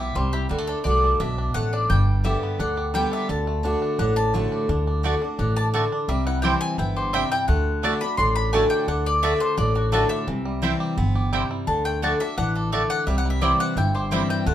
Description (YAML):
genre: bluegrass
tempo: 172 BPM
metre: 4/4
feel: straight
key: D mixolydian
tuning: A4 = 440 Hz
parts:
  - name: bluegrass banjo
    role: melody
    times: 0.0-14.5 s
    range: D3 to G4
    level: -31 LUFS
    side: right 3 dB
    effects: none
  - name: mandolin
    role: melody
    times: 0.0-14.5 s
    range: F#4 to C6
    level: -26 LUFS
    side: left 2 dB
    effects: none
  - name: picked steel-string acoustic guitar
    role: accompaniment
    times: 0.0-14.5 s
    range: G2 to G4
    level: -25 LUFS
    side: left 1 dB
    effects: none
  - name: upright bass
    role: bass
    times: 0.0-14.5 s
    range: G1 to D2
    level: -24 LUFS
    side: equal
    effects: none
  - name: mandolin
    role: stabs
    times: 5.0-14.2 s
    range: A3 to A5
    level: -26 LUFS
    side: right 3 dB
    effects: none
room: moderate studio reverb, RT60 0.5 s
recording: minimal, uncompressed stereo recording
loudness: -20 LUFS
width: side -11 dB against mid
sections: 0.0-14.5 A section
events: none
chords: 0.0 C; 0.5 D; 1.9 G; 3.3 D; 6.1 C; 7.5 D; 10.3 C; 11.7 D; 13.1 C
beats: 0.16 | 0.51 0.85 1.20 1.55 | 1.90 2.25 2.60 2.95 | 3.30 3.65 4.00 4.34 | 4.69 5.04 5.39 5.74 | 6.09 6.44 6.79 7.14 | 7.49 7.84 8.19 8.54 | 8.88 9.23 9.58 9.93 | 10.28 10.63 10.98 11.33 | 11.68 12.03 12.38 12.72 | 13.07 13.42 13.77 14.12 | 14.47